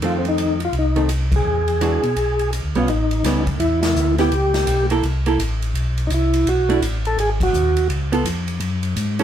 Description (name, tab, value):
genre	soul jazz organ trio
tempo	168 BPM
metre	4/4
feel	swing 63% on 8ths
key	unclear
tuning	A4 = 440 Hz
part	archtop guitar, miked and amplified	accompaniment	0.0-9.2 s	Eb3 to A4	-21 LUFS	right 4 dB	none
part	mellow tonewheel organ	bass	0.0-9.2 s	G#1 to B2	-21 LUFS	equal	chorus vibrato, slow rotary speaker
part	swinging big-band drum kit	drums	0.0-9.2 s	hi-hat, kick drum, ride cymbal, snare drum	-27 LUFS	equal	none
part	percussive tonewheel organ	melody	0.1-7.9 s	C4 to A4	-20 LUFS	equal	slow rotary speaker
room	moderate studio reverb, RT60 0.7 s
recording	band playing live in one room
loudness	-17 LUFS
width	side -10 dB against mid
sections	0.0-2.9 A section; 2.9-9.2 B section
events	band accent 1.3, 3.8, 7.4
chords	0.0 F7; 1.4 E9; 2.9 A9; 4.3 C#m7b5; 5.0 C6; 5.7 B7(no3); 7.2 G#5; 7.9 C#7b13; 8.6 N.C.